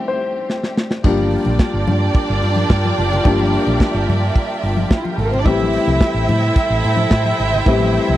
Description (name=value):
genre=disco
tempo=109 BPM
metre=4/4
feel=straight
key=G dorian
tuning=A4 = 440 Hz
part: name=warm baby grand piano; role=accompaniment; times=0.0-8.2 s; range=E3 to G5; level=-21 LUFS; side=left 4 dB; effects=none
part: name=clear studio string section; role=sustained chords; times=0.0-8.2 s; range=A3 to G5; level=-25 LUFS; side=equal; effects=none
part: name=modern studio drum kit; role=drums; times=0.5-8.1 s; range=crash cymbal, hi-hat, kick drum, snare drum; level=-15 LUFS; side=equal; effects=none
part: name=hollow-body short-scale fingered electric bass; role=bass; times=1.0-8.2 s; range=F#1 to A2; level=-19 LUFS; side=right 1 dB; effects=none
part: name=warm studio violin section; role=second line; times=1.1-8.2 s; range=G3 to E5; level=-21 LUFS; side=right 3 dB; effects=none
part: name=congas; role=percussion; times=1.1-8.2 s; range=none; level=-26 LUFS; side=left 4 dB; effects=none
room=little or no reverb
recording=dry, close 1970s-style studio recording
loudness=-14 LUFS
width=side -14 dB against mid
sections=0.0-1.0 A section; 1.0-8.2 B section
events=break 0.0-1.0; grand piano solo 0.0-1.0; drum fill 0.5-1.0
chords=0.0 Am7; 1.0 Gm7; 5.5 Am7